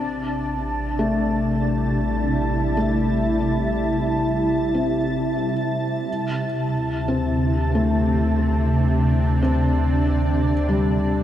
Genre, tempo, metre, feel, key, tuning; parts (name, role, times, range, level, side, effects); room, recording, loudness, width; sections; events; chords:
ambient; 72 BPM; 4/4; straight; A4 = 440 Hz
shimmering ambient pad; sustained chords; 0.0-11.2 s; C3 to A5; -22 LUFS; right 1 dB; chorus, built-in reverb
felt-muted upright piano; arpeggios; 0.0-11.2 s; G3 to C4; -25 LUFS; left 3 dB; diffuse ambient delay
deep rumbling drone; bass; 0.2-11.2 s; A1 to D2; -25 LUFS; equal; built-in reverb
wet cathedral reverb, RT60 7.2 s; dark, warm production; -19 LUFS; side -11 dB against mid
0.0-11.2 A section
0.0 Am7; 6.1 D5